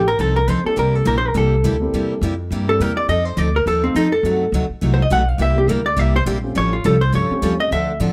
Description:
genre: country.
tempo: 208 BPM.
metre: 4/4.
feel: swing 59% on 8ths.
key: C mixolydian.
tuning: A4 = 440 Hz.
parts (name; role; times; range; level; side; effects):
vintage hollow-body jazz guitar; second line; 0.0-8.0 s; C4 to F#5; -21 LUFS; equal; none.
upright bass; bass; 0.0-8.1 s; A1 to A2; -22 LUFS; equal; none.
picked steel-string acoustic guitar; accompaniment; 0.2-8.1 s; C3 to A4; -25 LUFS; equal; none.
dark upright piano; accompaniment; 0.6-7.7 s; F3 to G4; -30 LUFS; equal; none.
room: light reverb.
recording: none.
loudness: -18 LUFS.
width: mono.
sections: 0.0-8.1 A section.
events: hollow-body jazz guitar solo 0.0-8.1.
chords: 0.0 F7; 0.8 C7; 3.1 F7; 4.2 F#dim7; 5.4 C7; 6.6 A7alt.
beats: 0.20 0.49 | 0.78 1.06 1.35 1.64 | 1.93 2.22 2.51 2.80 | 3.09 3.38 3.66 3.95 | 4.24 4.53 4.82 5.11 | 5.40 5.69 5.97 6.26 | 6.55 6.84 7.13 7.42 | 7.71 8.00.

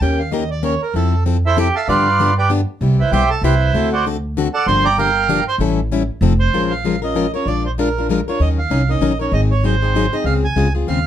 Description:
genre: acoustic string swing (jazz manouche).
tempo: 193 BPM.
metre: 3/4.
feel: swing 59% on 8ths.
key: Bb minor from 6.5 s.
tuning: A4 = 440 Hz.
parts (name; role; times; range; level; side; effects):
accordion; melody; 0.0-11.1 s; E4 to D6; -18 LUFS; right 4 dB; none.
picked plugged-in steel-string acoustic guitar; accompaniment; 0.0-11.0 s; C3 to Bb4; -20 LUFS; left 5 dB; none.
upright bass; bass; 0.0-11.1 s; F1 to G2; -18 LUFS; right 1 dB; none.
room: light reverb.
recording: dark, warm production.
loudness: -14 LUFS.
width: side -10 dB against mid.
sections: 0.0-6.5 A section; 6.5-11.1 B section.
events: accordion solo 0.0-6.5.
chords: 0.0 Eb7; 0.9 Fmaj7; 1.9 G7; 2.8 Cmaj7; 3.7 D7; 4.7 Gm7; 5.6 A7; 6.2 F7; 6.5 Bbm7; 7.5 Bb7; 8.4 Ebm9; 9.3 Ab7; 10.3 Dbmaj9.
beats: | 0.01 0.32 0.63 | 0.94 1.25 1.56 | 1.87 2.19 2.50 | 2.81 3.12 3.43 | 3.74 4.05 4.36 | 4.67 4.98 5.29 | 5.60 5.91 6.22 | 6.53 6.84 7.15 | 7.46 7.77 8.08 | 8.39 8.70 9.01 | 9.32 9.63 9.94 | 10.25 10.56 10.87.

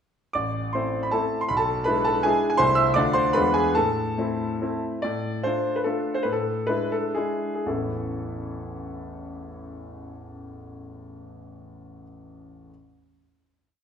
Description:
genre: classical, romantic triple-time dance for piano with dotted rhythms.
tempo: 112-172 BPM.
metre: 3/4.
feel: rubato.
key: unclear.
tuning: A4 = 441 Hz.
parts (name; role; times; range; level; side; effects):
clear grand piano; solo; 0.3-12.7 s; A1 to E6; -23 LUFS; equal; none.
room: wet recital hall reverb, RT60 1.3 s.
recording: minimal, uncompressed stereo recording.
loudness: -22 LUFS.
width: side -7 dB against mid.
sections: 0.3-5.0 A section; 5.0-7.7 coda; 7.7-10.6 final chord.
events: slowing down 4.4-7.7.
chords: 0.3 Am; 1.5 E7/B; 2.6 Am/C; 3.0 Dm; 3.4 E7b9; 3.8 Am; 5.0 Dm/A; 6.2 E7/A; 7.7 A.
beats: | 0.35 0.74 1.15 | 1.52 1.88 2.25 | 2.60 2.97 3.36 | 3.76 4.18 4.61 | 5.03 5.45 5.86 | 6.25 6.68 7.17 | 7.67 8.15 8.65 | 9.12 9.60 10.10.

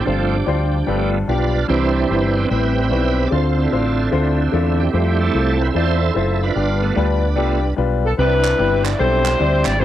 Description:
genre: uptempo gospel.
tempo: 148 BPM.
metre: 4/4.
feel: swing 65% on 8ths.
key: C major.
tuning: A4 = 440 Hz.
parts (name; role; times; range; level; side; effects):
bright tonewheel organ; sustained chords; 0.0-9.8 s; D3 to E5; -22 LUFS; right 6 dB; slow rotary speaker, chorus vibrato, cassette tape.
mellow French horn section; sustained chords; 0.0-8.2 s; D3 to E4; -26 LUFS; equal; cassette tape.
warm grand piano; accompaniment; 0.1-9.8 s; G2 to D5; -22 LUFS; left 7 dB; cassette tape.
fingered electric bass; bass; 0.1-9.8 s; F#1 to F2; -19 LUFS; equal; none.
clear horn section; melody; 8.0-9.8 s; D4 to D5; -18 LUFS; left 1 dB; cassette tape.
group handclap; percussion; 8.4-9.7 s; none; -27 LUFS; right 8 dB; none.
room: light reverb, small room reverb.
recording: home recording on cassette.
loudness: -15 LUFS.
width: side -12 dB against mid.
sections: 0.0-8.2 A section; 8.2-9.8 B section.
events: tonewheel organ solo 0.0-8.2.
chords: 0.1 G7sus4; 0.9 G7; 1.7 Cmaj7; 3.3 Dm7; 4.9 Fmaj7; 6.6 G7; 8.2 Cmaj9.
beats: | 0.07 0.47 0.88 1.28 | 1.69 2.10 2.50 2.91 | 3.32 3.72 4.13 4.53 | 4.94 5.35 5.75 6.16 | 6.56 6.97 7.37 7.78 | 8.18 8.59 8.99 9.40 | 9.80.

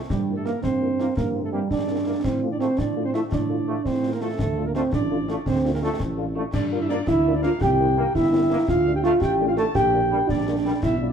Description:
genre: military-style march for wind band.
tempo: 112 BPM (dotted quarters).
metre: 6/8.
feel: straight.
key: F major.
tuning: A4 = 440 Hz.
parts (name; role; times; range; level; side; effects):
mellow trumpet section; melody; 0.1-11.1 s; G4 to A5; -36 LUFS; left 3 dB; none.
mellow euphonium; second line; 0.1-11.1 s; G3 to A4; -22 LUFS; right 2 dB; none.
mellow tuba; bass; 0.1-11.1 s; G1 to A2; -28 LUFS; right 1 dB; none.
concert snare drum, concert bass drum and clash cymbals; drums; 0.1-11.0 s; none; -30 LUFS; left 1 dB; none.
mellow French horn section; accompaniment; 0.3-11.1 s; G3 to F4; -32 LUFS; left 5 dB; none.
clear trombone section; sustained chords; 0.4-10.7 s; D3 to Bb3; -36 LUFS; right 1 dB; none.
room: moderate plate reverb, RT60 1.9 s.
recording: heard from further back in the room.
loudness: -20 LUFS.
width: side -7 dB against mid.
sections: 0.0-11.1 A section.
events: none.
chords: 0.1 C7/G; 2.2 F/A; 4.4 Dm; 6.5 Gm7; 7.6 C7; 8.7 D5; 9.8 Gm/Bb.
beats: | 0.10 0.64 | 1.17 1.71 | 2.25 2.78 | 3.32 3.85 | 4.39 4.93 | 5.46 6.00 | 6.54 7.07 | 7.61 8.14 | 8.68 9.22 | 9.76 10.29 | 10.83.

